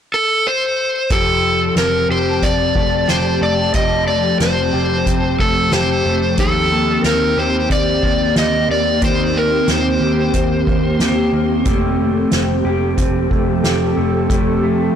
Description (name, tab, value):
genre	dream pop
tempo	91 BPM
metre	4/4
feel	straight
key	unclear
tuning	A4 = 440 Hz
part	overdriven slide guitar	melody	0.1-11.3 s	A4 to Eb5	-17 LUFS	left 1 dB	digital delay
part	ethereal airy pad	sustained chords	1.6-15.0 s	Eb3 to A5	-21 LUFS	right 1 dB	ensemble chorus, built-in reverb
part	electric guitar at the edge of break-up	arpeggios	1.1-15.0 s	Eb3 to G4	-19 LUFS	left 1 dB	wide subtle chorus, digital delay
part	vintage muted picked electric bass	bass	1.1-14.9 s	F1 to Eb2	-23 LUFS	equal	transformer saturation
part	soft-mallet drum kit	drums	1.1-14.5 s	hi-hat, kick drum, snare drum	-20 LUFS	equal	none
room	moderate concert hall reverb, RT60 2.3 s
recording	blown-out, overdriven recording, overdrive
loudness	-14 LUFS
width	side -8 dB against mid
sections	0.0-1.1 A section; 1.1-15.0 B section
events	none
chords	0.0 N.C.; 1.1 Fadd9; 6.4 Eb6; 11.7 Fadd9